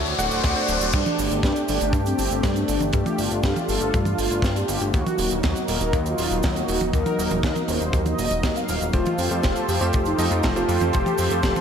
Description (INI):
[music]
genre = italo disco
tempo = 120 BPM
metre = 4/4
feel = straight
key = unclear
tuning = A4 = 442 Hz
[part]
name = lush unison pad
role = sustained chords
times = 0.0-11.6 s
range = F3 to A5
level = -26 LUFS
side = equal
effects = chorus
[part]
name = chorused synth bass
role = bass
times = 0.0-11.5 s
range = D1 to G2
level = -26 LUFS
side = equal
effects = tube saturation
[part]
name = riser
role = sound effects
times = 0.0-0.9 s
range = none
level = -28 LUFS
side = left 6 dB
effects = none
[part]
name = tight funk drum kit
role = drums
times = 0.1-11.6 s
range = cabasa, crash cymbal, hi-hat, snare drum, toms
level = -28 LUFS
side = right 2 dB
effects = high-pass filter on hats, high-pass filter on cymbals, high-pass filter on toms, high-pass filter on snare, high-pass filter on perc, high-pass filter on room
[part]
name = clear electric grand piano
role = stabs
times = 0.2-0.9, 8.9-11.6 s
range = A3 to F#5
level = -28 LUFS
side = equal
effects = vintage 12-bit sampler grit, analog delay
[part]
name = kick drum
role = drums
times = 0.4-11.5 s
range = none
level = -24 LUFS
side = equal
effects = none
[part]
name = mellow synth brass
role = melody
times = 0.9-11.6 s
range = C4 to F5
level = -27 LUFS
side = equal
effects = chorus, vintage 12-bit sampler grit, ping-pong delay
[sound]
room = moderate lush hall reverb, RT60 1.8 s, small room ambience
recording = dreamy mix soaked in reverb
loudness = -20 LUFS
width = side -7 dB against mid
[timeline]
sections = 0.9-11.6 A section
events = riser 0.0-0.9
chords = 0.0 D7; 0.9 Gsus2; 4.9 Ebm; 8.9 Fadd9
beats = 0.44 | 0.94 1.44 1.94 2.44 | 2.94 3.44 3.94 4.44 | 4.94 5.44 5.94 6.44 | 6.94 7.44 7.94 8.44 | 8.94 9.44 9.94 10.44 | 10.94 11.44